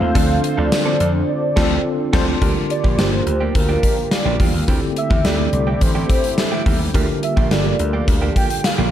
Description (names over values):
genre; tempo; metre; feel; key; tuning
1980s-style pop; 106 BPM; 4/4; straight; unclear; A4 = 440 Hz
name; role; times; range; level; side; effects
warm velvety synth lead; melody; 0.0-8.9 s; Bb4 to G5; -24 LUFS; right 1 dB; chorus
overdriven semi-hollow guitar; accompaniment; 0.0-2.3 s; F2 to D4; -32 LUFS; left 2 dB; none
tine electric piano; accompaniment; 0.0-8.9 s; D3 to C5; -23 LUFS; equal; medium stereo tremolo
sweeping resonant pad; sustained chords; 0.0-8.9 s; D3 to A5; -27 LUFS; equal; lush chorus
direct-recorded clean electric guitar; riff; 0.0-8.9 s; E3 to A4; -28 LUFS; right 6 dB; lush chorus
vintage slap bass; bass; 0.0-8.9 s; G1 to F2; -21 LUFS; equal; none
gated 80s drum kit; drums; 0.2-8.8 s; crash cymbal, hi-hat, kick drum, snare drum, tambourine; -18 LUFS; equal; none
room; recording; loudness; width
light reverb, small room ambience; dark, warm production; -15 LUFS; side -11 dB against mid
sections
0.0-2.4 A section; 2.4-8.9 B section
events
band accent 1.3-2.4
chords
0.2 Dm7; 2.4 Gm7; 4.7 C6; 6.9 Gm7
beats
| 0.15 0.72 1.28 1.85 | 2.42 2.98 3.55 4.12 | 4.68 5.25 5.81 6.38 | 6.95 7.51 8.08 8.64